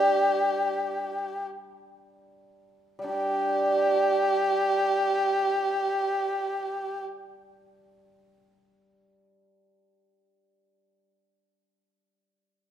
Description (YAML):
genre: chinese traditional, Chinese chamber ensemble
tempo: free time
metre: none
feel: none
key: unclear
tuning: A4 = 438 Hz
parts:
  - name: dark erhu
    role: melody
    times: 0.0-7.0 s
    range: G4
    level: -25 LUFS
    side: equal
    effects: none
  - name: hammered dulcimer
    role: accompaniment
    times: 0.0-11.1 s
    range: G3 to G4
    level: -29 LUFS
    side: right 2 dB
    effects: none
room: wet recital hall reverb, RT60 1.6 s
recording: minimal, uncompressed stereo recording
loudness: -24 LUFS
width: side -10 dB against mid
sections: 0.0-3.1 A section; 3.1-7.5 B section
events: slowing down 0.0-3.1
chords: none